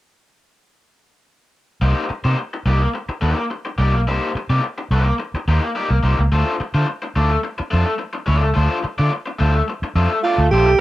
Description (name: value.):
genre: funk.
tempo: 107 BPM.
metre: 4/4.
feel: straight.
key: C dorian.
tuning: A4 = 440 Hz.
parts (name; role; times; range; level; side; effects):
raw garage guitar; accompaniment; 1.8-10.7 s; A3 to D5; -21 LUFS; left 2 dB; overdrive.
vintage muted fingered electric bass; bass; 1.8-10.8 s; Bb1 to D3; -17 LUFS; equal; none.
warm alto saxophone; melody; 10.2-10.8 s; F4 to G4; -15 LUFS; right 4 dB; none.
room: small room ambience.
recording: rough home demo mix.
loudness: -17 LUFS.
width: side -16 dB against mid.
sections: 1.8-10.8 A section.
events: none.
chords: 1.8 Cm7; 6.3 Dm7.